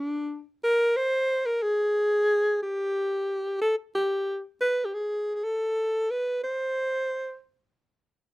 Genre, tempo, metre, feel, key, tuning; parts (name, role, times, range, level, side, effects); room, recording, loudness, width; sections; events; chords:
jazz; free time; A4 = 442 Hz
clear alto saxophone; solo; 0.0-7.4 s; D4 to C5; -24 LUFS; equal
light reverb; rough home demo mix; -24 LUFS; side -21 dB against mid
0.0-8.3 A section